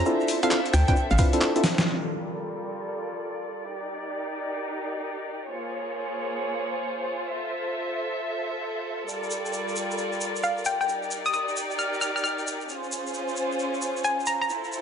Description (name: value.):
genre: UK garage, two-step garage.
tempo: 133 BPM.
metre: 4/4.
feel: swing 65% on 16ths.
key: G minor.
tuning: A4 = 440 Hz.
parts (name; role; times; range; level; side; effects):
hollow square pluck; melody; 0.0-1.3, 10.4-14.5 s; F5 to F6; -27 LUFS; equal; chorus, dub echo.
muted chamber violin section; sustained chords; 0.0-14.8 s; G3 to E5; -29 LUFS; equal; sidechain pumping, low-pass filter.
percussive organ stab; stabs; 0.0-1.6 s; C4 to B4; -25 LUFS; equal; chorus, dub echo.
hollow knocking FM bass; bass; 0.0-1.2 s; A1 to D2; -20 LUFS; equal; none.
egg shaker; percussion; 0.1-1.8, 9.1-14.8 s; none; -36 LUFS; right 1 dB; dub echo.
boom bap sampler-style drum kit; drums; 0.3-1.8 s; finger snaps, handclaps, hi-hat, snare drum; -27 LUFS; equal; none.
electronic kick drum; drums; 0.9-1.3 s; none; -22 LUFS; equal; none.
room: moderate plate reverb, RT60 1.6 s, digital ambience.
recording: echo-heavy mix, nothing above 10.3 kHz.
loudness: -25 LUFS.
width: side -7 dB against mid.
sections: 0.0-1.9 A section; 1.9-14.8 B section.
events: drum fill 1.6; band accent 1.8; filter sweep on violin section 1.9-14.8.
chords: 0.1 Dm9; 1.9 Gm9; 3.7 Ebmaj7; 5.5 Bbm9; 7.3 Fmaj7; 9.1 Gm9; 10.9 Ebmaj9; 12.7 C#maj7.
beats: | 0.06 0.51 0.96 1.41 | 1.86 2.31 2.77 3.22 | 3.67 4.12 4.57 5.02 | 5.47 5.92 6.37 6.83 | 7.28 7.73 8.18 8.63 | 9.08 9.53 9.98 10.43 | 10.89 11.34 11.79 12.24 | 12.69 13.14 13.59 14.04 | 14.49.